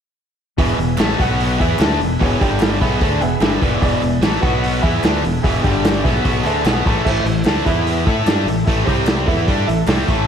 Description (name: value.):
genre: classic rock.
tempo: 148 BPM.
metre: 4/4.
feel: straight.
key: unclear.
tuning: A4 = 439 Hz.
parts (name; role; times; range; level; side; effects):
clear upright piano; accompaniment; 0.6-10.2 s; E4 to B5; -25 LUFS; right 4 dB; slapback echo.
bright tonewheel organ; sustained chords; 0.6-10.3 s; A3 to G5; -30 LUFS; equal; none.
distorted electric guitar; riff; 0.6-10.3 s; E2 to A4; -21 LUFS; left 10 dB; distortion, slapback echo.
distorted electric guitar; riff; 0.6-10.3 s; E2 to A4; -22 LUFS; right 10 dB; overdrive, slapback echo.
fingered electric bass; bass; 0.6-10.3 s; E1 to A2; -22 LUFS; equal; none.
vintage drum kit; drums; 0.6-10.2 s; crash cymbal, hi-hat, kick drum, snare drum; -19 LUFS; equal; none.
group handclap; percussion; 1.0-10.0 s; none; -38 LUFS; left 5 dB; none.
room: moderate recital hall reverb, RT60 1.4 s, small room ambience.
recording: big arena sound.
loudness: -14 LUFS.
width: side -8 dB against mid.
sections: 0.6-10.3 A section.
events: upright piano fill 2.6-3.8.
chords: 0.6 E; 1.2 B5; 1.6 E; 2.4 G5; 2.8 E; 4.4 B5; 4.8 E; 5.6 G5; 6.0 E; 7.0 A5; 7.7 E5; 8.1 A5; 8.9 C5; 9.3 A5.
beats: | 0.58 0.98 1.39 1.79 | 2.20 2.60 3.01 3.41 | 3.81 4.22 4.62 5.03 | 5.43 5.84 6.24 6.64 | 7.05 7.45 7.86 8.26 | 8.66 9.07 9.47 9.88.